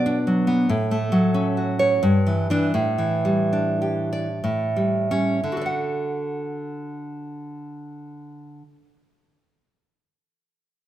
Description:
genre	romantic piece for solo classical guitar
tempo	57-95 BPM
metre	3/4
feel	rubato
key	D major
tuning	A4 = 440 Hz
part	nylon-string guitar	solo	0.0-8.8 s	G2 to F#5	-21 LUFS	equal	none
room	moderate recital hall reverb, RT60 1.5 s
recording	minimal, uncompressed stereo recording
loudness	-20 LUFS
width	side -12 dB against mid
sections	0.0-5.4 A section; 5.4-10.9 B section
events	slowing down 0.0-5.4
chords	0.0 Bm; 0.7 F#m/A; 2.0 Em7/G; 2.7 A7sus4; 4.4 A7; 5.4 D

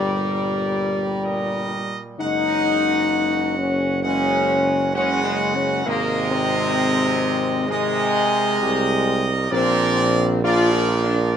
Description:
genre	classical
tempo	65 BPM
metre	4/4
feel	straight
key	unclear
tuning	A4 = 439 Hz
part	warm trumpet section	melody	0.0-11.3 s	Gb4 to Gb5	-24 LUFS	right 2 dB	none
part	dark French horn section	sustained chords	0.0-11.4 s	G3 to F4	-22 LUFS	left 3 dB	none
part	mellow trombone section	sustained chords	0.0-11.3 s	Bb2 to G4	-27 LUFS	right 3 dB	none
part	mellow tuba	bass	0.0-11.4 s	Gb1 to C2	-25 LUFS	right 4 dB	none
room	light reverb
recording	close, detailed microphones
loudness	-18 LUFS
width	side -8 dB against mid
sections	0.0-11.4 A section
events	none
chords	0.0 Gm; 2.2 Gbsus2; 5.9 Abadd9; 9.5 Bbadd9

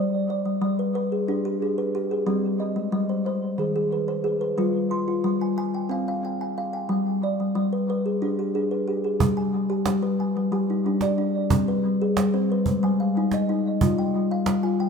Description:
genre	world meditative, meditative tuned percussion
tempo	182 BPM (eighths)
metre	7/8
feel	straight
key	G phrygian dominant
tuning	A4 = 440 Hz
part	kalimba	arpeggios	0.0-14.9 s	Eb3 to C6	-22 LUFS	left 1 dB	diffuse ambient delay
part	cajon	percussion	9.2-14.9 s	none	-26 LUFS	right 4 dB	none
room	wet echo chamber reverb, RT60 1.8 s, small room ambience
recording	none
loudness	-22 LUFS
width	side -6 dB against mid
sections	0.0-9.2 A section; 9.2-14.9 B section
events	none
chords	0.0 G; 2.3 Ab/G; 4.6 Fm/G; 6.9 G; 11.5 Ab/G; 13.8 Fm/G

